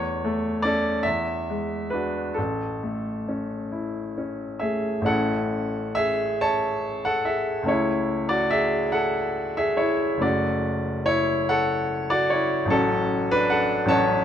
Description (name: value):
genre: classical, romantic nocturne for solo piano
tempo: 43-51 BPM (dotted quarters)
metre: 12/8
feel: rubato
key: A major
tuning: A4 = 439 Hz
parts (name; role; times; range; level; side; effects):
- clear baby grand piano; solo; 0.0-14.2 s; F#1 to A5; -22 LUFS; equal; none
room: light reverb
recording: close, detailed microphones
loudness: -22 LUFS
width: side -9 dB against mid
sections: 0.0-5.1 A section; 5.1-14.2 B section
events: none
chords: 0.0 A/E; 1.0 E9; 2.4 A; 7.7 A/C#; 10.2 F#m; 12.7 F#m/A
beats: 1.05 2.37 3.72 | 5.08 6.42 7.69 8.95 | 10.24 11.51 12.72 13.93